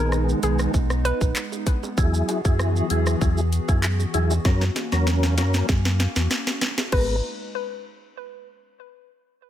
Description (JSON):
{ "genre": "dancehall", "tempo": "97 BPM", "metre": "4/4", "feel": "straight", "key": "G# minor", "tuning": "A4 = 440 Hz", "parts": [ { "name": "hollow square pluck", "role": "melody", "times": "0.0-1.2, 6.9-7.2 s", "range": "G#4 to B4", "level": "-29 LUFS", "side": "left 1 dB", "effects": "chorus, ping-pong delay" }, { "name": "percussive tonewheel organ", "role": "accompaniment", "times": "0.0-7.2 s", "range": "D#3 to A#4", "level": "-27 LUFS", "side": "left 2 dB", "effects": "chorus vibrato, fast rotary speaker, sidechain pumping" }, { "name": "hollow soft pad", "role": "sustained chords", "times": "0.0-7.2 s", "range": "E3 to G#4", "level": "-30 LUFS", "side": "equal", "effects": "chorus, sidechain pumping" }, { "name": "sub bass with octave", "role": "bass", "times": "0.0-7.2 s", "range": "G#1 to F#2", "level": "-22 LUFS", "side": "equal", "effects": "none" }, { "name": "island pop drum kit", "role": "drums", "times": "0.1-7.1 s", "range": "crash cymbal, handclaps, hi-hat, kick drum, rim click, shaker, snare drum", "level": "-24 LUFS", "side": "equal", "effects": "none" }, { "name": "bongos", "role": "percussion", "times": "0.4-7.2 s", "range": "none", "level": "-36 LUFS", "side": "right 12 dB", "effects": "none" } ], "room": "little or no reverb", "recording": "none", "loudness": "-20 LUFS", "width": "side -11 dB against mid", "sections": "0.0-6.9 A section; 6.9-9.4 B section", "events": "drum fill 4.5-6.9", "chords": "0.0 B6; 2.0 Eadd9; 4.5 F#; 6.9 G#madd9", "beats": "0.12 0.74 1.36 | 1.98 2.60 3.21 3.83 | 4.45 5.07 5.69 6.31 | 6.93" }